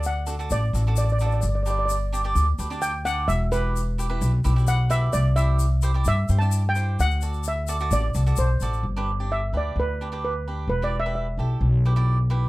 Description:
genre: calypso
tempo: 130 BPM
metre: 4/4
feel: straight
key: G major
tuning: A4 = 440 Hz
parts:
  - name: steel pan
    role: melody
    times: 0.0-12.3 s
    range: B4 to A5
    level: -28 LUFS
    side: equal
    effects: none
  - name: cavaquinho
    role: accompaniment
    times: 0.0-12.5 s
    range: D4 to D5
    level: -30 LUFS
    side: right 3 dB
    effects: none
  - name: upright bass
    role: bass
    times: 0.0-12.5 s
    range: E1 to G2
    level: -22 LUFS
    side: equal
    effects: none
  - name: egg shaker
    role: percussion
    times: 0.0-8.8 s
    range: none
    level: -38 LUFS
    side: left 19 dB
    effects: none
room: little or no reverb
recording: dry, close 1970s-style studio recording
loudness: -21 LUFS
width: side -19 dB against mid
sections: 0.0-8.8 A section; 8.8-12.5 B section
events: steel pan solo 0.0-8.8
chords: 0.0 D; 1.4 G; 3.3 Em; 5.1 C; 7.0 D; 8.8 G; 10.7 Em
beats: 0.05 0.51 0.98 | 1.44 1.90 2.37 2.83 | 3.29 3.76 4.22 4.68 | 5.14 5.61 6.07 6.53 | 7.00 7.46 7.92 8.38 | 8.84 9.31 9.77 10.23 | 10.69 11.16 11.62 12.08

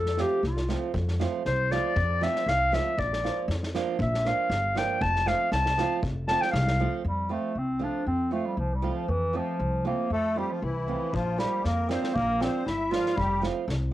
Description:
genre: balkan folk, Balkan wedding band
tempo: 118 BPM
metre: 2/4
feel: straight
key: F major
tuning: A4 = 439 Hz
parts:
  - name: warm clarinet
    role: melody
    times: 0.0-13.4 s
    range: E3 to A5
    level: -27 LUFS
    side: left 1 dB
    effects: cassette tape
  - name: upright bass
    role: bass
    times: 0.0-13.9 s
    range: F1 to F2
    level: -29 LUFS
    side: equal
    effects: none
  - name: unplugged drum kit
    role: percussion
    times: 0.1-6.7, 11.1-13.8 s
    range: kick drum, snare drum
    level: -36 LUFS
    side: equal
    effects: cassette tape
  - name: nylon-string guitar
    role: accompaniment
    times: 0.2-13.6 s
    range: F3 to F4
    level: -32 LUFS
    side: right 7 dB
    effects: cassette tape
  - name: musette accordion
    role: second line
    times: 10.1-13.4 s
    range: E4 to F5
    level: -37 LUFS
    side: left 7 dB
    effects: cassette tape
room: light reverb, small room ambience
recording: home recording on cassette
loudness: -24 LUFS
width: side -14 dB against mid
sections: 0.0-7.0 A section; 7.0-13.9 B section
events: clarinet solo 0.0-7.0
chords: 0.0 F; 3.0 Bb; 5.0 F; 11.1 Bb; 13.2 F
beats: 0.44 | 0.94 1.46 | 1.96 2.47 | 2.98 3.49 | 4.00 4.50 | 5.01 5.52 | 6.03 6.54 | 7.05 7.56 | 8.07 8.58 | 9.09 9.61 | 10.12 10.63 | 11.14 11.65 | 12.16 12.67 | 13.18 13.69

